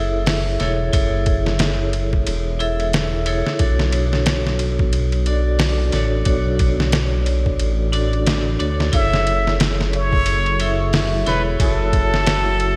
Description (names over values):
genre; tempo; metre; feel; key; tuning
trip hop; 90 BPM; 4/4; swing 59% on 16ths; F# minor; A4 = 441 Hz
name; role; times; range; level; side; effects
vibraphone with hard mallets; accompaniment; 0.0-12.8 s; D4 to E5; -26 LUFS; equal; harmonic tremolo, vintage 12-bit sampler grit, tape echo
dark detuned saw bass; bass; 0.0-12.8 s; E1 to D2; -23 LUFS; equal; none
trip hop sampler-style drum kit; drums; 0.3-12.8 s; hi-hat, kick drum, ride cymbal, snare drum; -24 LUFS; equal; gated reverb
trumpet with plunger mute; melody; 8.9-12.8 s; A4 to E5; -23 LUFS; equal; vintage 12-bit sampler grit, tape echo
deep dark ambient pad; sustained chords; 10.7-12.8 s; F#3 to F#4; -36 LUFS; equal; none
room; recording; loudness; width
light reverb; bright 1980s-style digital production; -19 LUFS; mono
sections
0.0-12.8 A section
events
none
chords
0.0 F#m7; 3.6 Bm7; 8.9 F#m7